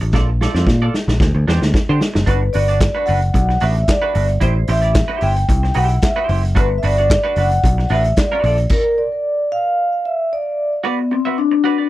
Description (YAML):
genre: disco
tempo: 112 BPM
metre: 4/4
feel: straight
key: G major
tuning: A4 = 439 Hz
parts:
  - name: semi-hollow electric guitar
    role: accompaniment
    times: 0.0-11.9 s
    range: D4 to E5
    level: -24 LUFS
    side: right 6 dB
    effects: analog chorus
  - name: picked electric bass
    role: bass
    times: 0.0-8.7 s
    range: F#1 to D3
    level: -16 LUFS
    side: equal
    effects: none
  - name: vintage drum kit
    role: drums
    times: 0.0-8.8 s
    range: crash cymbal, handclaps, hi-hat, kick drum, snare drum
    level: -19 LUFS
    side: equal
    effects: none
  - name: vibraphone with soft mallets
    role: melody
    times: 2.3-11.9 s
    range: B3 to G5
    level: -18 LUFS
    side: left 1 dB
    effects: tape echo
room: little or no reverb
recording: none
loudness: -14 LUFS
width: side -15 dB against mid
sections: 0.0-2.3 A section; 2.3-10.8 B section; 10.8-11.9 C section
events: drum fill 0.1-2.3; stop 8.7-10.8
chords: 0.0 Bbmaj7; 1.2 D7sus4; 2.3 Gmaj7; 4.4 Am7; 6.6 Gmaj7; 8.4 Bbmaj7; 10.8 Bm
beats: | 0.13 0.66 1.20 1.74 | 2.27 2.81 3.34 3.88 | 4.42 4.95 5.49 6.03 | 6.56 7.10 7.63 8.17 | 8.71 9.24 9.78 10.31 | 10.85 11.38